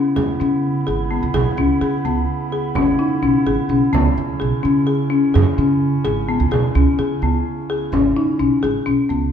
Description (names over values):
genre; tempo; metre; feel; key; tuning
contemporary instrumental, chamber music in an uneven meter; 255 BPM (eighths); 11/8; straight; C# minor; A4 = 442 Hz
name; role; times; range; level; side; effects
dark woodwind section; sustained chords; 0.0-9.1 s; C#3 to E4; -26 LUFS; right 3 dB; none
folk marimba with medium mallets; arpeggios; 0.0-9.3 s; B3 to G#4; -18 LUFS; left 4 dB; none
upright bass; bass; 0.0-9.3 s; G#1 to C#3; -21 LUFS; right 4 dB; none
frame drum; percussion; 0.2-9.0 s; none; -27 LUFS; right 8 dB; none
room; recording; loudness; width
moderate recital hall reverb, RT60 1.6 s; none; -16 LUFS; side -8 dB against mid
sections
0.0-9.1 A section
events
none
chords
0.0 C#m7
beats
0.17 0.41 0.64 0.88 1.11 | 1.35 1.58 1.82 2.05 2.29 2.52 2.76 2.99 3.23 3.46 3.70 | 3.93 4.17 4.40 4.64 4.87 5.11 5.34 5.58 5.82 6.05 6.29 | 6.52 6.76 6.99 7.23 7.46 7.70 7.93 8.17 8.40 8.64 8.87 | 9.11